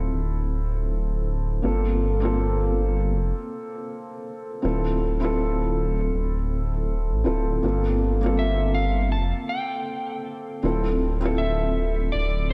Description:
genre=trip hop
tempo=80 BPM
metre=4/4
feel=swing 57% on 16ths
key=D minor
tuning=A4 = 440 Hz
part: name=felt-muted upright piano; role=accompaniment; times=0.0-12.5 s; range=Bb3 to A4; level=-29 LUFS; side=equal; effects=harmonic tremolo, low-pass filter, tape echo
part: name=dark detuned saw bass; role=bass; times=0.0-12.5 s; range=D1 to A1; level=-26 LUFS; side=equal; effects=tube saturation
part: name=electric slide guitar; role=melody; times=8.4-12.5 s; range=D5 to A5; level=-31 LUFS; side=equal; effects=tape echo
room=moderate lush hall reverb, RT60 2.5 s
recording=dreamy mix soaked in reverb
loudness=-25 LUFS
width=mono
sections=0.0-12.5 A section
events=none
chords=0.0 Dm9; 1.6 Gm11; 4.6 Dm9; 7.6 Gm11; 10.6 Dm9

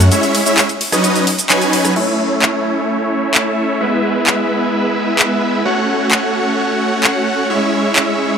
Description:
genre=EDM, festival progressive house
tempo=130 BPM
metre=4/4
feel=straight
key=unclear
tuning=A4 = 440 Hz
part: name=supersaw chords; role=riff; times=0.0-8.4 s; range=F#3 to G#5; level=-14 LUFS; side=equal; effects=low-pass filter, dub echo
part: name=house drum kit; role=drums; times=0.0-8.1 s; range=crash cymbal, handclaps, hi-hat, ride cymbal, rim click, shaker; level=-17 LUFS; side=equal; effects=overdrive
room=light reverb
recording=none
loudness=-13 LUFS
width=side -7 dB against mid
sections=0.0-2.0 A section; 2.0-8.4 B section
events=drop 0.0-2.0; band accent 1.5; filter sweep on supersaw synth 2.0-8.4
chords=0.1 C#m; 1.0 Badd9; 2.0 A; 3.8 E; 5.7 F#m; 7.5 C#m

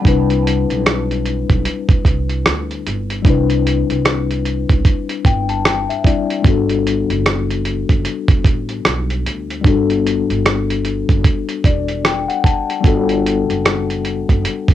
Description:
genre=lo-fi hip hop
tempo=75 BPM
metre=4/4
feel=swing 59% on 16ths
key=G major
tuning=A4 = 442 Hz
part: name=mellow tine electric piano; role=accompaniment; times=0.0-14.7 s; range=G3 to A5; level=-19 LUFS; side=left 8 dB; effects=medium stereo tremolo, cassette tape
part: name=dusty soul sampler-style drum kit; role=drums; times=0.0-14.7 s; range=hi-hat, kick drum, rim click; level=-15 LUFS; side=right 2 dB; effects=vintage 12-bit sampler grit, cassette tape
part: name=upright bass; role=bass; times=0.1-14.4 s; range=E1 to D2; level=-21 LUFS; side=right 2 dB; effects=none
room=light reverb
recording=home recording on cassette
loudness=-14 LUFS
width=side -12 dB against mid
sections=0.0-14.7 A section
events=tine electric piano fill 4.8-6.4, 11.2-12.8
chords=0.0 Cmaj9; 6.4 Gmaj9

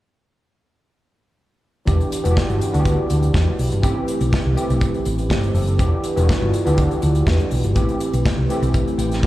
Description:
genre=disco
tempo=122 BPM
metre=4/4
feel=straight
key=E minor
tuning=A4 = 440 Hz
part: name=overdriven tine electric piano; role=accompaniment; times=1.9-9.3 s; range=E3 to G5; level=-22 LUFS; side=equal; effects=analog chorus, slapback echo
part: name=hollow-body short-scale fingered electric bass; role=bass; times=1.9-9.3 s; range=E1 to E2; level=-19 LUFS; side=equal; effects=none
part: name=modern studio drum kit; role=drums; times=1.9-9.3 s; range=hi-hat, kick drum, snare drum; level=-22 LUFS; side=equal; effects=none
room=small room reverb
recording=live gig heard through the venue's PA, club reverb, lossy compression artefacts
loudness=-16 LUFS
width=side -16 dB against mid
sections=1.9-9.3 A section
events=tine electric piano fill 8.7-9.3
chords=1.9 Em7; 3.8 Am7; 5.8 Em7; 7.8 Am7

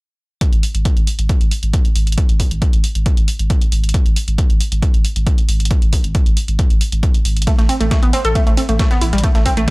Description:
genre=driving peak-time techno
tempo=136 BPM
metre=4/4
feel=straight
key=unclear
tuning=A4 = 445 Hz
part: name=electronic hi-hat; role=drums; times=0.4-9.7 s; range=none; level=-26 LUFS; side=right 1 dB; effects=sidechain pumping on hats
part: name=electronic kick drum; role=drums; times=0.4-9.7 s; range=none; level=-15 LUFS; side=equal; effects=none
part: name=saturated sub bass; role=bass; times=0.5-9.7 s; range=G#1 to A1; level=-19 LUFS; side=equal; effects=tube saturation, sidechain pumping, low-pass filter
part: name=analog pluck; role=riff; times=7.5-9.7 s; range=G3 to A4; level=-18 LUFS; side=right 1 dB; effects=chorus, overdrive, sidechain pumping, tape echo
part: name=dusty soul sampler-style drum kit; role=drums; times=7.5-9.7 s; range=ride cymbal, snare drum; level=-32 LUFS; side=right 1 dB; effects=none
room=little or no reverb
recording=dry, gritty hardware recording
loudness=-13 LUFS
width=side -25 dB against mid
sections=0.4-9.7 A section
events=none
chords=0.4 N.C.; 7.5 Am

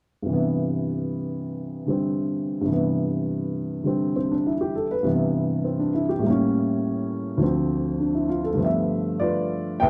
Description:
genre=solo jazz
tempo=101 BPM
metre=4/4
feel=swing 68% on 8ths, rubato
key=C major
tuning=A4 = 440 Hz
part: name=warm upright piano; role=solo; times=0.2-9.9 s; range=C2 to G5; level=-24 LUFS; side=equal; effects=none
room=moderate club reverb, RT60 0.6 s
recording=dark, warm production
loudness=-25 LUFS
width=mono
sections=0.3-9.8 A section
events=none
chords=0.3 Cmaj9/G; 6.2 A7b9; 7.4 Dm7; 8.6 G13

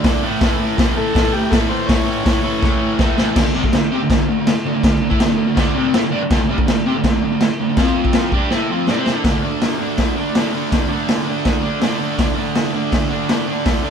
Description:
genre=garage rock duo or trio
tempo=163 BPM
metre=4/4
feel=straight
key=D minor from 3.4 s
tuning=A4 = 440 Hz
part: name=fuzz guitar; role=riff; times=0.0-13.9 s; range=A2 to C5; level=-18 LUFS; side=right 1 dB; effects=distortion
part: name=raw garage drum kit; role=drums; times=0.0-13.7 s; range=crash cymbal, hi-hat, kick drum, snare drum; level=-18 LUFS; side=equal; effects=none
part: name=combo organ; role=melody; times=1.0-2.9 s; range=G4 to C#5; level=-23 LUFS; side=left 3 dB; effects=none
room=light reverb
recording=band playing live in one room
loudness=-15 LUFS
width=side -7 dB against mid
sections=0.0-3.4 A section; 3.4-9.2 B section; 9.2-13.9 C section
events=drum fill 2.6-3.4, 8.5-9.2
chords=0.2 A; 3.4 D5; 7.8 F5; 8.3 Dm; 9.2 D5

